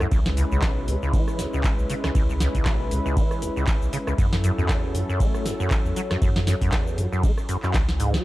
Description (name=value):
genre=acid house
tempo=118 BPM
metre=4/4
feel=swing 56% on 16ths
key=unclear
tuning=A4 = 439 Hz
part: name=warm analog pad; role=sustained chords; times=0.0-8.2 s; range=F#3 to B4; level=-30 LUFS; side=left 1 dB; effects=wide subtle chorus, sidechain pumping
part: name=deep acid bass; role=riff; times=0.0-8.2 s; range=F#1 to A3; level=-26 LUFS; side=equal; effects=tube saturation, ensemble chorus, sidechain pumping
part: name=warm sub bass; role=bass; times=0.0-8.2 s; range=B1 to F#2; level=-25 LUFS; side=equal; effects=tube saturation, sidechain pumping
part: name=booming analog drum machine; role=drums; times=0.0-8.2 s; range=cabasa, handclaps, hi-hat, ride cymbal, rim click, snare drum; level=-31 LUFS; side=equal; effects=none
part: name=electronic kick drum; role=drums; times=0.1-7.9 s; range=none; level=-23 LUFS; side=equal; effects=none
room=light reverb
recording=none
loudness=-20 LUFS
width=side -17 dB against mid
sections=0.0-8.2 A section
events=drop 0.0-8.2; drum fill 7.7-8.2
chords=0.1 C#m7; 4.2 F#m7